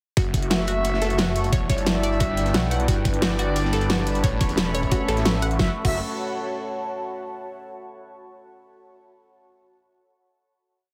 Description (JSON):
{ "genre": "dark technical drum and bass", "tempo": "177 BPM", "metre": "4/4", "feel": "straight", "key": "F# phrygian", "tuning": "A4 = 439 Hz", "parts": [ { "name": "dark analog pad", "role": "sustained chords", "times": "0.2-5.8 s", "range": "G3 to E5", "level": "-33 LUFS", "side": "equal", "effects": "chorus, sidechain pumping" }, { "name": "analog pluck", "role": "arpeggios", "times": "0.2-6.0 s", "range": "F#4 to F#5", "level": "-34 LUFS", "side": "equal", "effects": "chorus, phaser, sidechain pumping, delay" }, { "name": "snarling distorted saw bass", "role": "bass", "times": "0.2-6.0 s", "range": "E1 to B1", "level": "-28 LUFS", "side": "equal", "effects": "sidechain pumping" }, { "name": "crunchy breakbeat drum kit", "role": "drums", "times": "0.2-5.5 s", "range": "hi-hat, snare drum", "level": "-36 LUFS", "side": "equal", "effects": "high-pass filter on hats, high-pass filter on snare, high-pass filter on room" }, { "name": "dubstep drum kit", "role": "drums", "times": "0.2-5.9 s", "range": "crash cymbal, hi-hat, rim click, snare drum", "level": "-28 LUFS", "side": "equal", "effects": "overdrive" }, { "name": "electronic kick drum", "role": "drums", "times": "0.2-5.9 s", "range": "none", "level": "-25 LUFS", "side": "equal", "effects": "overdrive" }, { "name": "warbly tape-like pad", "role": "texture", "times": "0.6-6.9 s", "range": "E4 to C#6", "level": "-34 LUFS", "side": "equal", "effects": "chorus, built-in reverb, sidechain pumping" }, { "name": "mellow brass ensemble", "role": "stabs", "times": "0.4-6.0 s", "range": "A3 to E5", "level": "-34 LUFS", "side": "equal", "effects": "delay" } ], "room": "light reverb, digital ambience", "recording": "heavily compressed radio sound, multiband compression", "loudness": "-23 LUFS", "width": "mono", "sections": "0.2-5.6 drop; 5.6-6.9 final chord", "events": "drop 0.2-5.6", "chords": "0.2 F#m7; 1.5 Em7; 2.9 G; 4.2 Aadd9; 5.6 F#m7" }